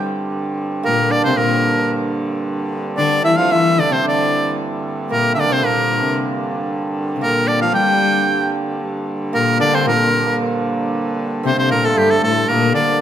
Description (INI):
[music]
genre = medieval dance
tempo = 113 BPM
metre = 2/4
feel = straight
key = G dorian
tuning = A4 = 442 Hz
[part]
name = bright shawm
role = melody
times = 0.0-13.0 s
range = G4 to G5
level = -17 LUFS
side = equal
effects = none
[part]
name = hammered dulcimer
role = second line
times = 0.0-13.0 s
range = G3 to G4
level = -21 LUFS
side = right 4 dB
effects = none
[part]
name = rich viola da gamba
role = second line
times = 0.0-13.0 s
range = G2 to G3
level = -22 LUFS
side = left 6 dB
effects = none
[part]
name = rich hurdy-gurdy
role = drone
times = 0.0-13.0 s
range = G2 to D3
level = -24 LUFS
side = equal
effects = none
[sound]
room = moderate recital hall reverb, RT60 1.5 s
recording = none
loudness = -15 LUFS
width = side -10 dB against mid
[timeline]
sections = 0.3-8.8 A section; 8.8-13.0 A section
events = none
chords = none